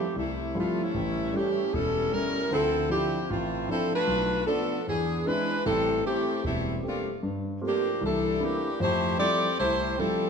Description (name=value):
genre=jazz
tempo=153 BPM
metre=4/4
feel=swing 64% on 8ths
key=unclear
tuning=A4 = 441 Hz
part: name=dark saxophone section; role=melody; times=0.0-10.3 s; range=E3 to D5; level=-26 LUFS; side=left 1 dB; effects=none
part: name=warm concert grand piano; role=accompaniment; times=0.0-10.3 s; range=E1 to G4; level=-30 LUFS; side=right 1 dB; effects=none
room=moderate recital hall reverb, RT60 1.6 s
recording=none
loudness=-25 LUFS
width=side -6 dB against mid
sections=0.0-10.3 A section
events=none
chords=0.0 Fmaj9; 0.9 A7; 2.5 Dm9; 4.1 Bm7b5; 4.9 E7b13; 5.7 Am7; 7.2 Gm11; 8.0 C13; 8.8 Fmaj9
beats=0.15 0.54 | 0.94 1.33 1.72 2.11 | 2.51 2.90 3.29 3.69 | 4.08 4.47 4.87 5.26 | 5.65 6.04 6.44 6.83 | 7.22 7.62 8.01 8.40 | 8.79 9.19 9.58 9.97